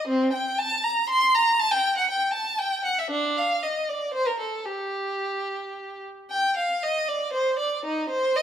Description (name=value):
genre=classical, baroque-style suite movement for unaccompanied violin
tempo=109-121 BPM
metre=3/4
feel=rubato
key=G minor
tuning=A4 = 440 Hz
part: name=warm violin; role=solo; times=0.0-8.4 s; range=C4 to C6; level=-22 LUFS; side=equal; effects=none
room=wet stone room reverb, RT60 1.4 s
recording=none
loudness=-22 LUFS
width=side -9 dB against mid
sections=0.0-6.3 A section; 6.3-8.4 A section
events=none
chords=none